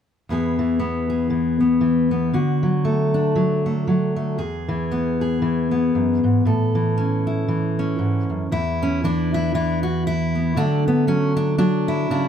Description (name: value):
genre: folk, solo fingerstyle acoustic guitar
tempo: 117 BPM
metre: 4/4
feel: swing 57% on 8ths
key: E mixolydian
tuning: A4 = 440 Hz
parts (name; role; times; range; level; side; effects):
- fingerpicked steel-string acoustic guitar; solo; 0.3-12.3 s; E2 to A4; -18 LUFS; equal; none
room: light reverb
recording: close, detailed microphones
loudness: -18 LUFS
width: side -8 dB against mid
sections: 0.3-8.5 A section; 8.5-12.3 B section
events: none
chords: 0.3 E; 2.3 D; 4.4 Eadd9; 6.5 A; 8.5 E5; 10.6 D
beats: | 0.29 0.80 1.32 1.83 | 2.35 2.86 3.37 3.89 | 4.40 4.92 5.43 5.94 | 6.46 6.97 7.48 7.99 | 8.51 9.02 9.53 10.04 | 10.55 11.07 11.58 12.09